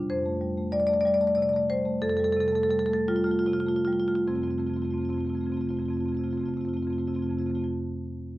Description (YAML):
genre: classical, contemporary piece for solo marimba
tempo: 48-64 BPM (dotted quarters)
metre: 6/8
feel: rubato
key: F major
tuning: A4 = 440 Hz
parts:
  - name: marimba with medium hard mallets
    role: solo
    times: 0.0-7.7 s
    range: F2 to D5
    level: -24 LUFS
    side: equal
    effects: none
room: light reverb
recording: dark, warm production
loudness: -24 LUFS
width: side -17 dB against mid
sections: 0.1-4.3 A section; 4.3-8.4 B section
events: slowing down 0.0-4.3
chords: 0.1 Fadd9; 4.3 F